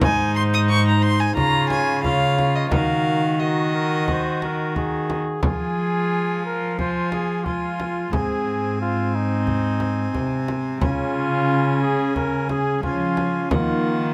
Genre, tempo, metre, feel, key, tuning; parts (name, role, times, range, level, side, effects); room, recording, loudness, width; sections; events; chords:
classical, renaissance-style consort dance; 89 BPM; 4/4; straight; A4 = 440 Hz
mellow cornet; melody; 0.0-14.1 s; Eb4 to Db5; -29 LUFS; equal
rich violin; second line; 0.0-14.1 s; Eb5 to Eb6; -29 LUFS; equal
concert harp; accompaniment; 0.0-14.1 s; Ab2 to Db5; -30 LUFS; equal
rich viola; accompaniment; 0.0-14.1 s; Bb3 to Gb4; -29 LUFS; equal
rich cello; bass; 0.0-14.1 s; Ab2 to F3; -27 LUFS; equal
frame drum; percussion; 0.0-13.8 s; -28 LUFS; equal
light reverb; close, detailed microphones; -22 LUFS; mono
0.0-5.4 A section; 5.4-14.1 B section
0.0 Ab; 1.4 Db; 2.7 Ebm; 5.4 Fm; 8.1 Ab; 10.8 Db; 13.5 Ebm